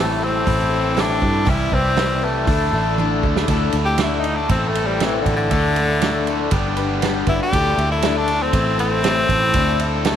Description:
folk rock and heartland rock; 119 BPM; 4/4; straight; A4 = 440 Hz
edgy tenor saxophone; melody; 0.0-10.2 s; D3 to G4; -21 LUFS; left 1 dB
picked twelve-string acoustic guitar; accompaniment; 0.0-10.2 s; A2 to B4; -25 LUFS; left 10 dB
biting overdriven guitar; riff; 0.0-10.2 s; G2 to A4; -24 LUFS; equal
fingered electric bass; bass; 0.0-10.2 s; G1 to G2; -22 LUFS; right 1 dB
natural country drum kit; drums; 0.5-10.2 s; hi-hat, kick drum, ride cymbal, snare drum, toms; -23 LUFS; right 4 dB
small room ambience; 1960s-style stereo; -16 LUFS; side -9 dB against mid
0.0-3.5 A section; 3.5-10.2 B section
drum fill 3.0-3.5; tenor saxophone solo 3.5-10.2
0.0 Am7; 1.5 Cmaj7; 2.5 Dsus2; 4.5 Am; 5.5 Dsus2; 6.5 G; 7.5 Dsus2; 8.5 Am; 9.5 Dsus2
0.47 0.97 | 1.47 1.98 2.48 2.99 | 3.49 4.00 4.50 5.00 | 5.51 6.01 6.52 7.02 | 7.53 8.03 8.54 9.04 | 9.54 10.05

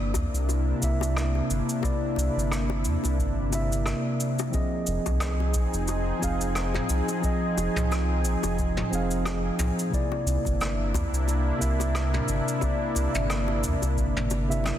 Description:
sunset chillout; 89 BPM; 4/4; swing 56% on 16ths; A4 = 440 Hz
mellow tine electric piano; accompaniment; 0.0-14.8 s; C3 to F5; -29 LUFS; equal; auto-pan, tape echo
lush unison pad; sustained chords; 0.0-14.8 s; C3 to Ab4; -31 LUFS; equal; chorus
round analog bass; bass; 0.0-14.7 s; F1 to E2; -27 LUFS; equal
vintage brush drum kit; drums; 0.1-14.8 s; cabasa, rim click, toms; -34 LUFS; equal
bongos; percussion; 0.1-14.8 s; -38 LUFS; left 10 dB
electronic kick drum; drums; 0.2-14.1 s; -30 LUFS; equal
light reverb, small room ambience; dense, heavily limited modern master; -24 LUFS; side -11 dB against mid
0.0-14.8 A section
0.0 C9; 4.5 Fm7; 9.9 C9
0.49 1.17 | 1.84 2.51 3.19 3.86 | 4.54 5.21 5.88 6.56 | 7.23 7.91 8.58 9.26 | 9.93 10.60 11.28 11.95 | 12.63 13.30 13.97 14.65

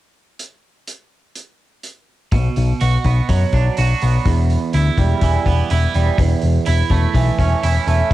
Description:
quiet-loud alternative rock; 125 BPM; 4/4; straight; B minor; A4 = 439 Hz
loose indie drum kit; drums; 0.4-8.1 s; hi-hat, kick drum; -22 LUFS; left 1 dB; cassette tape
twangy electric guitar; arpeggios; 2.3-8.1 s; E2 to F#4; -20 LUFS; right 6 dB; lush chorus, cassette tape, analog delay
picked electric bass; bass; 2.3-8.1 s; E1 to F#2; -16 LUFS; left 1 dB
studio ambience; home recording on cassette; -14 LUFS; side -15 dB against mid
0.4-2.3 A section; 2.3-8.1 B section
0.4 N.C.; 2.3 Bm; 4.3 Em; 6.2 A/E
| 0.40 0.88 1.37 1.85 | 2.33 2.81 3.29 3.77 | 4.25 4.74 5.22 5.70 | 6.18 6.66 7.14 7.62 | 8.10

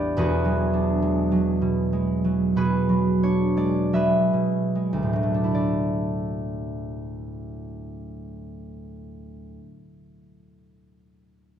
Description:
classical, solo harp piece; 35-56 BPM; 4/4; rubato; D lydian; A4 = 440 Hz
concert harp; solo; 0.0-10.2 s; E1 to E5; -22 LUFS; right 1 dB
wet recital hall reverb, RT60 1.4 s; dark, warm production; -21 LUFS; side -9 dB against mid
0.0-5.5 A section; 5.5-11.6 B section
slowing down 0.0-5.5
0.2 E9; 5.5 Dadd9
| 0.17 1.31 2.56 3.93 | 5.53 7.03 8.55 10.10

